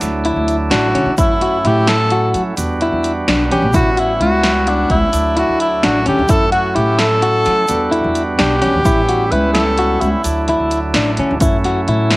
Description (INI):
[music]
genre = progressive instrumental, band music in an uneven meter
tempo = 258 BPM (eighths)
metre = 11/8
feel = straight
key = A mixolydian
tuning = A4 = 441 Hz
[part]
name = bright tonewheel organ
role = accompaniment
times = 0.0-12.2 s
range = F#3 to F#4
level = -22 LUFS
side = right 2 dB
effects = cassette tape
[part]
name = upright bass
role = bass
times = 0.0-12.2 s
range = A1 to F#3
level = -20 LUFS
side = equal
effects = none
[part]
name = punchy analog drum machine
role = drums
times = 0.0-12.2 s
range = hi-hat, kick drum, snare drum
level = -19 LUFS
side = equal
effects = cassette tape
[part]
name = egg shaker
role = percussion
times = 0.0-11.6 s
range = none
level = -32 LUFS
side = right 3 dB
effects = none
[part]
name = clean electric guitar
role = arpeggios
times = 0.3-12.2 s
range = C#4 to F#4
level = -18 LUFS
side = left 1 dB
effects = cassette tape
[part]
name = clear tenor saxophone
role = melody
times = 0.7-10.5 s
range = D4 to B4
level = -16 LUFS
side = equal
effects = cassette tape, analog delay
[sound]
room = light reverb, studio ambience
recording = home recording on cassette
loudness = -12 LUFS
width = side -21 dB against mid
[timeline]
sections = 0.0-12.2 A section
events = tenor saxophone solo 0.0-12.2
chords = 0.0 Dadd9; 1.2 F#m7; 2.6 Em7; 3.7 A7; 5.1 Dadd9; 6.3 F#m7; 7.7 Em7; 8.9 A7; 10.2 Dadd9; 11.4 F#m7